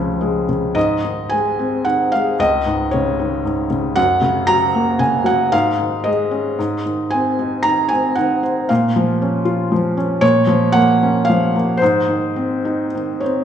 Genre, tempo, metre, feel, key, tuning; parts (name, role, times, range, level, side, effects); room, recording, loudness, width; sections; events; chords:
classical, lyrical solo piano; 99-119 BPM; 3/4; rubato; A4 = 439 Hz
felt-muted upright piano; solo; 0.0-13.4 s; Db2 to Bb5; -15 LUFS; equal
wet recital hall reverb, RT60 1.6 s; recorded in a church or concert hall; -15 LUFS; side -9 dB against mid
0.8-13.4 A section
0.0 Db; 0.8 Ab; 2.4 Dbsus2; 4.0 Gb; 5.5 Absus4; 6.6 Ab; 8.7 Bbm; 11.8 Ab